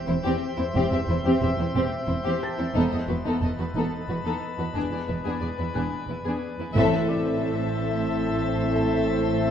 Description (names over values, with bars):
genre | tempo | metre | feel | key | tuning
cinematic, suspense film score | 90 BPM | 3/4 | straight | E harmonic minor | A4 = 441 Hz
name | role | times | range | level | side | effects
drifting glass-harmonics texture | sustained chords | 0.0-9.5 s | B4 to A5 | -33 LUFS | left 2 dB | chorus, built-in reverb
felt-muted upright piano | texture | 0.0-9.5 s | A4 to A6 | -39 LUFS | right 1 dB | none
muted studio violin section | melody | 0.1-9.5 s | G4 to E5 | -32 LUFS | left 6 dB | none
muted studio violin section | second line | 0.1-9.5 s | C4 to A4 | -33 LUFS | left 4 dB | none
muted studio viola section | accompaniment | 0.1-9.5 s | B3 to C4 | -30 LUFS | right 2 dB | none
muted studio cello section | bass | 0.1-9.5 s | E2 to A2 | -30 LUFS | right 2 dB | none
muted studio double bass section | bass | 0.1-9.5 s | E1 to A1 | -31 LUFS | right 3 dB | none
clear trombone section | sustained chords | 6.7-9.5 s | A2 to A3 | -29 LUFS | right 2 dB | none
mellow French horn section | sustained chords | 6.8-9.5 s | C4 to E4 | -28 LUFS | left 6 dB | none
timpani | percussion | 6.8-7.7 s | A2 | -30 LUFS | left 1 dB | none
room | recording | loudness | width
moderate scoring stage reverb, RT60 1.4 s | dark, warm production | -23 LUFS | side -9 dB against mid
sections
0.0-6.8 A section; 6.8-9.5 B section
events
band accent 6.8-7.4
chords
0.0 C/E; 2.8 B7/E; 4.8 E7; 6.8 Am